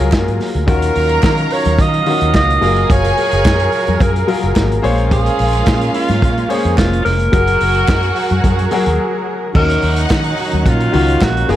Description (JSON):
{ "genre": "disco", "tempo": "108 BPM", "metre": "4/4", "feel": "straight", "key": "unclear", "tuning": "A4 = 440 Hz", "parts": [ { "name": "breathy alto saxophone", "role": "melody", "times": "0.0-11.6 s", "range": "F4 to Eb5", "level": "-18 LUFS", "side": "right 1 dB", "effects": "none" }, { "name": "clear studio violin section", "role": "second line", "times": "0.0-11.6 s", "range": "Eb4 to Bb5", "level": "-23 LUFS", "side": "right 1 dB", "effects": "analog delay" }, { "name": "clear concert grand piano", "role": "accompaniment", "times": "0.0-11.6 s", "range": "Eb3 to Db5", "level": "-20 LUFS", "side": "left 4 dB", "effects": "none" }, { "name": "warm studio string section", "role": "sustained chords", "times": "0.0-11.6 s", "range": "Eb3 to F5", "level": "-23 LUFS", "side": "right 3 dB", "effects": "none" }, { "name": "fingered electric bass with an envelope filter", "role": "bass", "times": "0.0-11.6 s", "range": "F1 to Eb3", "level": "-17 LUFS", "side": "equal", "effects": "none" }, { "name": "vintage drum kit", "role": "drums", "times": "0.1-11.6 s", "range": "crash cymbal, hi-hat, kick drum, snare drum", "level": "-18 LUFS", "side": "equal", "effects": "none" }, { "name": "congas", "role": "percussion", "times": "0.1-11.6 s", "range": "none", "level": "-26 LUFS", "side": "left 6 dB", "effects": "none" }, { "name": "group handclap", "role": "percussion", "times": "0.1-11.3 s", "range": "none", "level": "-33 LUFS", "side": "right 4 dB", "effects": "none" } ], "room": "small room reverb", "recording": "none", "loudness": "-12 LUFS", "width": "side -12 dB against mid", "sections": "0.0-9.5 A section; 9.5-11.6 A section", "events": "break 9.0-9.5", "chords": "0.0 Gbmaj9; 0.7 Ebm9; 2.6 Gbmaj9; 4.8 Bbm9; 7.3 Gbadd9; 9.5 Ebm9", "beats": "0.12 | 0.68 1.23 1.79 2.34 | 2.90 3.45 4.00 4.56 | 5.11 5.67 6.22 6.78 | 7.33 7.88 8.44 8.99 | 9.55 10.10 10.66 11.21" }